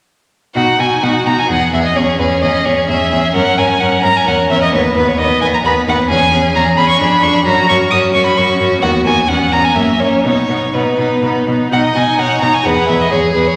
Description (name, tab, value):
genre	quick classical-period movement for string quartet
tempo	130 BPM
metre	3/4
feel	rubato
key	B major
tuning	A4 = 440 Hz
part	bright violin	second line	0.5-13.6 s	C#4 to D#5	-21 LUFS	equal	none
part	rich violin	melody	0.6-13.6 s	B4 to D#6	-16 LUFS	equal	none
part	warm viola	accompaniment	0.6-13.6 s	A#3 to G#4	-20 LUFS	equal	none
part	rich cello	bass	0.6-13.4 s	D#2 to B2	-20 LUFS	equal	none
room	wet concert hall reverb, RT60 2.1 s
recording	none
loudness	-13 LUFS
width	mono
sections	0.6-11.7 A section; 11.7-13.6 A section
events	none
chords	0.6 B; 1.5 E; 2.0 C#m/E; 3.3 F#; 4.3 F#7 (rootless); 4.7 B/D#; 6.1 C#m/E; 7.0 Fdim7; 7.5 F#5; 8.8 B/D#; 9.3 C#m7/E; 9.8 F#7; 10.2 B; 12.7 E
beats	| 0.56 1.03 1.49 | 1.96 2.43 2.89 | 3.35 3.81 4.27 | 4.73 5.19 5.64 | 6.10 6.55 7.00 | 7.46 7.91 8.37 | 8.82 9.29 9.76 | 10.25 10.74 11.23 | 11.72 12.19 12.65 | 13.12